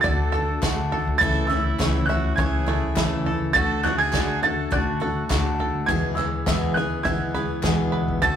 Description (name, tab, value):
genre	indie folk with a building arrangement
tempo	103 BPM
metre	4/4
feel	straight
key	E mixolydian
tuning	A4 = 439 Hz
part	clear upright piano	melody	0.0-8.4 s	E6 to A6	-24 LUFS	right 3 dB	none
part	clear trumpet	second line	0.0-5.6 s	E4 to A4	-31 LUFS	right 4 dB	none
part	picked steel-string acoustic guitar	accompaniment	0.0-8.4 s	E2 to G#4	-27 LUFS	left 2 dB	none
part	mellow tonewheel organ	sustained chords	0.0-8.2 s	C#3 to B4	-33 LUFS	equal	slow rotary speaker
part	bluegrass banjo	arpeggios	0.0-8.4 s	A3 to G#5	-31 LUFS	right 2 dB	none
part	upright bass	bass	0.0-8.4 s	A1 to E2	-28 LUFS	equal	none
part	unplugged drum kit	drums	0.0-8.4 s	kick drum, snare drum, toms	-27 LUFS	equal	none
part	group handclap	percussion	0.6-7.8 s	none	-37 LUFS	left 3 dB	none
part	tambourine	percussion	0.6-7.8 s	none	-40 LUFS	right 4 dB	none
room	moderate studio reverb, RT60 0.6 s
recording	rough rehearsal-room recording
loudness	-20 LUFS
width	side -9 dB against mid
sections	0.0-8.4 A section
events	none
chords	0.0 D; 1.2 A/C#; 3.5 D; 5.9 E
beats	0.04 0.63 | 1.21 1.79 2.38 2.96 | 3.54 4.13 4.71 5.30 | 5.88 6.46 7.05 7.63 | 8.22